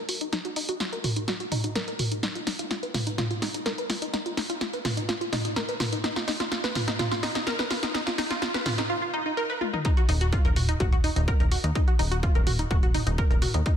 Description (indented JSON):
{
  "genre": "melodic techno",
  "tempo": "126 BPM",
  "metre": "4/4",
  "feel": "straight",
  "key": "Eb minor",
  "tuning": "A4 = 439 Hz",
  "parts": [
    { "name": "tight sequenced synth", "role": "arpeggios", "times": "0.0-13.7 s", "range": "Eb4 to Cb5", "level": "-30 LUFS", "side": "equal", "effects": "chorus, vintage 12-bit sampler grit, sidechain pumping, ping-pong delay" },
    { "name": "punchy analog drum machine", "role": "drums", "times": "0.1-13.8 s", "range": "hi-hat, snare drum, toms", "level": "-29 LUFS", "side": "equal", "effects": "studio reverb" },
    { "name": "electronic kick drum", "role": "drums", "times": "9.8-13.8 s", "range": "none", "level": "-23 LUFS", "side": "equal", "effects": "overdrive, studio reverb" },
    { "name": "plucky analog bass", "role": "bass", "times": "10.1-13.6 s", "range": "Eb1 to Eb2", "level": "-26 LUFS", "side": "equal", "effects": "sidechain pumping" }
  ],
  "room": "moderate lush hall reverb, RT60 1.7 s, digital ambience",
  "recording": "dense, heavily limited modern master",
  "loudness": "-24 LUFS",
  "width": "side -9 dB against mid",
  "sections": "0.0-9.8 A section; 9.8-13.8 B section",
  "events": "build-up 0.0-9.8; drum fill 0.0-8.9, 9.6; filter sweep on synth arpeggio sound 0.0-9.8; drop 9.8-13.8",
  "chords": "0.0 Ebm; 2.2 Ebsus2; 9.8 Ebm"
}